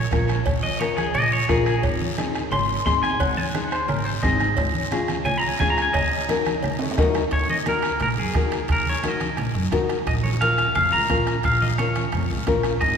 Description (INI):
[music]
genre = latin, cumbia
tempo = 175 BPM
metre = 4/4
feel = straight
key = Eb minor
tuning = A4 = 439 Hz
[part]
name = clean electric guitar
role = melody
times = 0.0-13.0 s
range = Ab4 to C6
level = -24 LUFS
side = equal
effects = spring reverb
[part]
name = upright bass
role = bass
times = 0.0-13.0 s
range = Ab1 to Gb2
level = -27 LUFS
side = right 2 dB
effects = none
[part]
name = nylon-string guitar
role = accompaniment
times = 0.1-12.7 s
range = C4 to Eb5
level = -27 LUFS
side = left 4 dB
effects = none
[part]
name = bombo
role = percussion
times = 0.1-13.0 s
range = none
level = -28 LUFS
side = right 2 dB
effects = none
[part]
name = congas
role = percussion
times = 0.1-13.0 s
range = none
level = -30 LUFS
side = right 1 dB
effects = none
[part]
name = guiro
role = percussion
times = 0.1-13.0 s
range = none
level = -36 LUFS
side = left 4 dB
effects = none
[part]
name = timbales and cowbell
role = percussion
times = 0.1-13.0 s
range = none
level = -34 LUFS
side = right 1 dB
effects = none
[sound]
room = wet church reverb, RT60 3.5 s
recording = recorded in a church or concert hall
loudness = -19 LUFS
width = side -7 dB against mid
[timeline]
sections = 0.0-7.3 A section; 7.3-13.0 B section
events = clean electric guitar solo 0.0-7.3; nylon-string guitar fill 6.6-7.3; drum fill 6.8-7.3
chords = 0.0 Bbm; 1.8 Ab; 4.6 Db; 5.9 Ebm; 10.1 Bbm